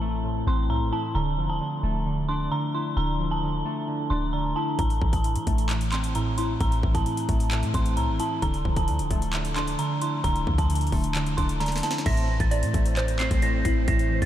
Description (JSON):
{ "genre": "hip hop, trap", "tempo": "132 BPM", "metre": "4/4", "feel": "half-time", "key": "A phrygian", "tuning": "A4 = 440 Hz", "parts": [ { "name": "dark detuned synth bell", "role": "melody", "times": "0.0-14.3 s", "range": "A5 to C7", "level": "-30 LUFS", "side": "right 2 dB", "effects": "chorus, low-pass filter, ping-pong delay" }, { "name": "warbly lo-fi synth keys", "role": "accompaniment", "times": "0.0-14.3 s", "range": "A2 to E4", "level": "-28 LUFS", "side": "equal", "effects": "chorus, phaser, low-pass filter" }, { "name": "warm 808-style bass", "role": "bass", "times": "0.0-14.3 s", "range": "D1 to A2", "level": "-27 LUFS", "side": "equal", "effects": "none" }, { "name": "trap drum kit", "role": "drums", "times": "4.8-14.3 s", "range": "crash cymbal, handclaps, hi-hat, kick drum, snare drum", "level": "-28 LUFS", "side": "equal", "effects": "overdrive" }, { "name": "hollow square pluck", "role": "second line", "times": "12.1-13.4 s", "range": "C5 to E5", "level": "-34 LUFS", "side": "right 4 dB", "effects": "chorus, ping-pong delay" }, { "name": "hollow soft pad", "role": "sustained chords", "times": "12.1-14.3 s", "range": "A3 to C5", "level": "-35 LUFS", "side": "left 1 dB", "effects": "ensemble chorus" } ], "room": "moderate huge ambient reverb, RT60 6.9 s", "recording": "dreamy mix soaked in reverb", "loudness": "-23 LUFS", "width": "side -12 dB against mid", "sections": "0.0-12.1 A section; 12.1-14.3 B section", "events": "drum fill 11.6-12.1", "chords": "0.0 Am; 1.2 Dmadd9; 4.8 Am; 8.4 Dmadd9; 12.1 Am" }